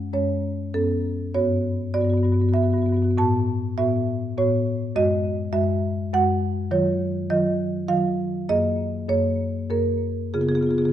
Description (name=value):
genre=classical, contemporary piece for solo marimba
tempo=101 BPM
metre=3/4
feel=rubato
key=unclear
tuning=A4 = 441 Hz
part: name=marimba with medium mallets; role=solo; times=0.0-10.9 s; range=F#2 to A5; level=-20 LUFS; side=equal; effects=none
room=wet recital hall reverb, RT60 1.5 s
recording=dark, warm production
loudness=-20 LUFS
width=side -11 dB against mid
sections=0.0-10.9 A section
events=none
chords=0.0 F#sus2; 0.8 Bsus2/F#; 1.4 Gmaj7#11; 3.2 A69; 5.0 F#sus2; 6.7 D#m9; 8.5 F#69; 10.3 C#7